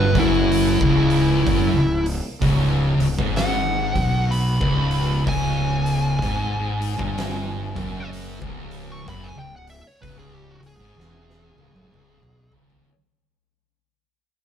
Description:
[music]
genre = stoner and doom metal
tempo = 63 BPM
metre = 4/4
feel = swing 62% on 8ths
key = C# minor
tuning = A4 = 441 Hz
[part]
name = fuzz lead guitar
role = melody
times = 0.0-12.5 s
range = E4 to C#6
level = -25 LUFS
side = left 1 dB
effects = distortion
[part]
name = thick fuzz guitar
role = riff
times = 0.0-12.9 s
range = C#2 to B2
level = -24 LUFS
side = left 6 dB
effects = distortion
[part]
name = thick fuzz guitar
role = riff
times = 0.0-12.9 s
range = C#2 to B2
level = -25 LUFS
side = right 8 dB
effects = distortion
[part]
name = fuzz fingered electric bass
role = bass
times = 0.0-12.8 s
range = C#1 to B1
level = -27 LUFS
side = equal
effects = overdrive
[part]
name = oversized low-tuned drum kit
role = drums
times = 0.2-12.9 s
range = hi-hat, kick drum, snare drum, toms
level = -28 LUFS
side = equal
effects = none
[sound]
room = moderate stone room reverb, RT60 1.2 s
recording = band playing live in one room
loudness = -18 LUFS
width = side -9 dB against mid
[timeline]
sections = 0.0-12.9 A section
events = fade-out 0.0-12.9; lead electric guitar solo 0.0-12.9; drum fill 11.0-12.9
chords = 0.0 C#m

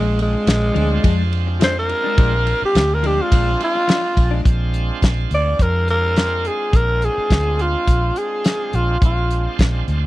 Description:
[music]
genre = straight-eighth soul blues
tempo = 105 BPM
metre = 4/4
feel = swing 54% on 16ths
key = Bb mixolydian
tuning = A4 = 440 Hz
[part]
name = growling tenor saxophone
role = melody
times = 0.0-9.6 s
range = Ab3 to D5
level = -20 LUFS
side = equal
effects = none
[part]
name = bright tonewheel organ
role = accompaniment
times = 0.0-10.1 s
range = Ab3 to F4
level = -28 LUFS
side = right 7 dB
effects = slow rotary speaker, overdrive
[part]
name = direct-recorded clean electric guitar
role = stabs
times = 0.0-4.5 s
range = F3 to D4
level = -26 LUFS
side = left 8 dB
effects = analog chorus
[part]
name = vintage muted fingered electric bass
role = bass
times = 0.0-10.1 s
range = Bb1 to F2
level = -19 LUFS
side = equal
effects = none
[part]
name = warm soul drum kit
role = drums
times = 0.2-10.0 s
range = hi-hat, kick drum, ride cymbal, snare drum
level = -17 LUFS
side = equal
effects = none
[sound]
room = studio reverb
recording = dry, close 1970s-style studio recording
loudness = -15 LUFS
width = side -17 dB against mid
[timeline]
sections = 0.0-4.5 A section; 4.5-10.1 B section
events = tenor saxophone solo 0.0-4.5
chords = 0.0 Bb7

